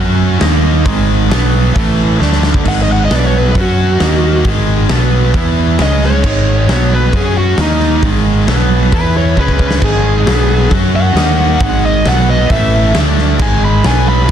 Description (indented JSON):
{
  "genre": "hard rock",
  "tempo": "134 BPM",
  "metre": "4/4",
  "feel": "straight",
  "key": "G# minor",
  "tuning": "A4 = 440 Hz",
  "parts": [
    { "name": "bright tonewheel organ", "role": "sustained chords", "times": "0.0-14.3 s", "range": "E4 to D#6", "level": "-28 LUFS", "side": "equal", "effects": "none" },
    { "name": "overdriven semi-hollow guitar", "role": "riff", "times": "0.0-14.3 s", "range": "G#2 to F#4", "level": "-18 LUFS", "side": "right 12 dB", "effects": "none" },
    { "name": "scooped high-gain guitar", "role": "riff", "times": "0.0-14.3 s", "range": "G#2 to F#4", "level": "-22 LUFS", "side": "left 1 dB", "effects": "distortion" },
    { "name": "tight distorted guitar", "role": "riff", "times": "0.0-14.3 s", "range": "G#2 to F#4", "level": "-21 LUFS", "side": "left 13 dB", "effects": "distortion" },
    { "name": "fuzz fingered electric bass", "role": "bass", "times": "0.0-14.3 s", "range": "G#1 to F#2", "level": "-13 LUFS", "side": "equal", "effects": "overdrive" },
    { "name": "huge arena drum kit", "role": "drums", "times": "0.4-14.3 s", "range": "crash cymbal, hi-hat, kick drum, snare drum", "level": "-16 LUFS", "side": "equal", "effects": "vintage 12-bit sampler grit" },
    { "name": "high-gain lead guitar", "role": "melody", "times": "2.7-14.3 s", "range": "D#4 to B5", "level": "-17 LUFS", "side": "equal", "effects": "distortion, plate reverb" }
  ],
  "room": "light reverb",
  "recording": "dense, heavily limited modern master",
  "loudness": "-9 LUFS",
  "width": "side -9 dB against mid",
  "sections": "0.0-2.7 A section; 2.7-14.3 B section",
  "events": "drum fill 2.2-2.7, 9.4-9.8; lead electric guitar solo 2.7-14.3",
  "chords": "0.4 D#5; 0.9 G#m; 1.3 B5; 1.8 A5; 2.2 D5; 2.7 G#m; 3.1 B5; 3.6 F#5; 4.0 D#5; 4.5 G#m; 4.9 B5; 5.3 E5; 5.8 C#5; 6.2 G#m; 6.7 B5; 7.1 F#5; 7.6 D#5; 8.0 G#m; 8.5 B5; 8.9 E5; 9.4 C#5; 9.8 G#m; 10.3 B5; 10.7 F#5; 11.2 D#5; 11.6 G#m; 12.1 B5; 12.5 A5; 13.0 D5; 13.4 G#m; 13.8 B5"
}